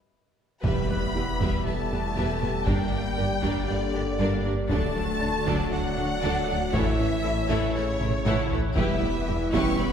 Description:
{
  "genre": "cinematic, hybrid orchestral and electronic film score",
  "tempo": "118 BPM",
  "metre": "4/4",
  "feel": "straight",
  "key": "E dorian",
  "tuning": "A4 = 439 Hz",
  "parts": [
    { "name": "rich studio violin section", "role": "melody", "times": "0.6-9.9 s", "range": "C#5 to C#6", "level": "-32 LUFS", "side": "left 3 dB", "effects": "none" },
    { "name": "clear symphonic violin section", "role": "second line", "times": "0.6-9.9 s", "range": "E4 to E5", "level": "-35 LUFS", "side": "left 2 dB", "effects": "none" },
    { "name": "warm symphonic viola section", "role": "accompaniment", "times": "0.6-9.9 s", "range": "E3 to G4", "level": "-32 LUFS", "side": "right 2 dB", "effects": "none" },
    { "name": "hollow soft pad", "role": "sustained chords", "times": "0.6-9.9 s", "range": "D3 to E5", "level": "-33 LUFS", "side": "right 1 dB", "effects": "chorus" },
    { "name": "mellow French horn section", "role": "sustained chords", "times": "0.6-9.9 s", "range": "C#3 to C#4", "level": "-32 LUFS", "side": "left 2 dB", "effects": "none" },
    { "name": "soft round pluck", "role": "arpeggios", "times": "0.6-9.9 s", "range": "D3 to A4", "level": "-37 LUFS", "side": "right 1 dB", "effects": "none" },
    { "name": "pure sine sub bass", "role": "bass", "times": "0.6-9.9 s", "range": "D1 to A1", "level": "-34 LUFS", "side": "equal", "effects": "none" },
    { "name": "rich symphonic double bass section", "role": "bass", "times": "0.6-9.9 s", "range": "E1 to D2", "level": "-33 LUFS", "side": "right 2 dB", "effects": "none" },
    { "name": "warm symphonic cello section", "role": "bass", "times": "0.6-9.9 s", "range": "E2 to D3", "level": "-33 LUFS", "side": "right 2 dB", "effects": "none" },
    { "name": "taiko ensemble", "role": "drums", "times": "0.6-9.9 s", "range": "none", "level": "-31 LUFS", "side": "equal", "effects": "none" },
    { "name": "impact", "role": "sound effects", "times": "0.6-2.7 s", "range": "none", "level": "-35 LUFS", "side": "equal", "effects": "none" },
    { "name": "felt-muted upright piano", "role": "texture", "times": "0.9-9.9 s", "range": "E5 to A6", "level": "-42 LUFS", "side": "left 1 dB", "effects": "none" }
  ],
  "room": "wet scoring stage reverb, RT60 1.7 s",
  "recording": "heard from further back in the room",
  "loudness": "-23 LUFS",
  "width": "side -8 dB against mid",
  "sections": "0.6-9.9 A section",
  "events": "break 0.0-0.6; impact 0.6-2.7; drum fill 8.0-8.8",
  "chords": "0.0 N.C.; 0.6 Em; 2.7 Gm; 4.7 D; 6.7 A; 8.8 Em"
}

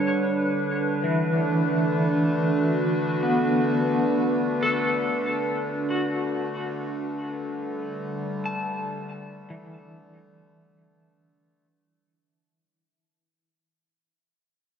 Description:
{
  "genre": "ambient",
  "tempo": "free time",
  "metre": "none",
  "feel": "none",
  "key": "unclear",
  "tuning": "A4 = 436 Hz",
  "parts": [
    { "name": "warbly tape-like pad", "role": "sustained chords", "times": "0.0-11.6 s", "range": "D3 to B4", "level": "-26 LUFS", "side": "right 1 dB", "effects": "chorus, built-in reverb, phaser" },
    { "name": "electric guitar at the edge of break-up", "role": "arpeggios", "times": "0.0-13.6 s", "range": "E3 to A5", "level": "-27 LUFS", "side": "left 1 dB", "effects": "tremolo, diffuse ambient delay" },
    { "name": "hand-pumped harmonium", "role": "drone", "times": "1.3-11.7 s", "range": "D3 to A3", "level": "-33 LUFS", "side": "left 2 dB", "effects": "none" }
  ],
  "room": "wet lush hall reverb, RT60 2.9 s",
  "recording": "dark, warm production",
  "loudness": "-22 LUFS",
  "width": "side -7 dB against mid",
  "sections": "0.0-11.6 A section",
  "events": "fade-out 4.7-11.6",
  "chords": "0.0 G/D; 1.3 D6; 6.4 G/D"
}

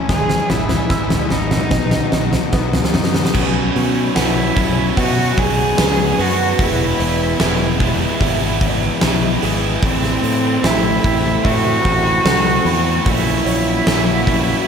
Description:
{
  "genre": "post-rock",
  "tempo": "74 BPM",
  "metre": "4/4",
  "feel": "straight",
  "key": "unclear",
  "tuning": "A4 = 440 Hz",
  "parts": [
    { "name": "warm cello", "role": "melody", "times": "0.0-14.7 s", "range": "C4 to G#4", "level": "-20 LUFS", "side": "right 2 dB", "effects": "slapback echo, analog delay" },
    { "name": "warbly tape-like pad", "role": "sustained chords", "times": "0.0-14.7 s", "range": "E3 to B5", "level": "-30 LUFS", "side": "equal", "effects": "chorus, built-in reverb, phaser" },
    { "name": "felt-muted upright piano", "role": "arpeggios", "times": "0.0-14.3 s", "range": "G#4 to E6", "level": "-30 LUFS", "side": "right 6 dB", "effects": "slapback echo, analog delay" },
    { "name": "twangy electric guitar", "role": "arpeggios", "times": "0.0-3.3 s", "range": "B2 to D#4", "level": "-30 LUFS", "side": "left 2 dB", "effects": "slapback echo, analog delay" },
    { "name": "thick fuzz guitar", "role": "riff", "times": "0.0-14.7 s", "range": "G#2 to F#4", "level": "-23 LUFS", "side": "left 10 dB", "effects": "distortion, slapback echo" },
    { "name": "modern bright fingered electric bass", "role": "bass", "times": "0.1-14.5 s", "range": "E1 to B2", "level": "-21 LUFS", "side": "equal", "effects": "none" },
    { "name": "huge arena drum kit", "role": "drums", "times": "0.1-14.5 s", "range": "crash cymbal, hi-hat, kick drum, snare drum, toms", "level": "-18 LUFS", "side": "equal", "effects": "none" },
    { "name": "crunchy overdriven guitar", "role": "riff", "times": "3.3-14.7 s", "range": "A2 to F#4", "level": "-22 LUFS", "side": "right 11 dB", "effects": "none" }
  ],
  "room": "moderate lush hall reverb, RT60 3.0 s",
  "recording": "big arena sound",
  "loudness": "-14 LUFS",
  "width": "side -7 dB against mid",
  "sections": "0.0-3.3 A section; 3.3-14.7 B section",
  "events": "build-up 0.0-3.3; drum fill 0.0-3.3",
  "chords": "0.1 E/G#; 1.7 B; 3.3 Bsus2; 6.6 E; 9.8 Amadd9; 13.1 F#7/A#"
}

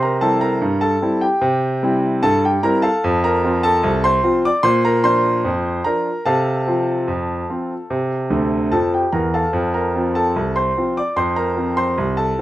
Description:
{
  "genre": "ragtime piano",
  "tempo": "74 BPM",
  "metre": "2/4",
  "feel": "straight",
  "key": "F major",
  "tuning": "A4 = 440 Hz",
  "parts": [
    { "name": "clear concert grand piano", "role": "solo", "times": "0.0-12.4 s", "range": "C2 to D6", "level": "-16 LUFS", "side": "equal", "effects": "none" }
  ],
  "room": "wet studio reverb, RT60 0.6 s",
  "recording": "rough home demo mix",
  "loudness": "-16 LUFS",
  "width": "side -15 dB against mid",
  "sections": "0.0-12.4 A section",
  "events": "grand piano fill 8.3-9.5",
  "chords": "0.0 C7; 3.0 F; 4.6 Bb; 6.3 F/C; 7.9 C; 9.5 F"
}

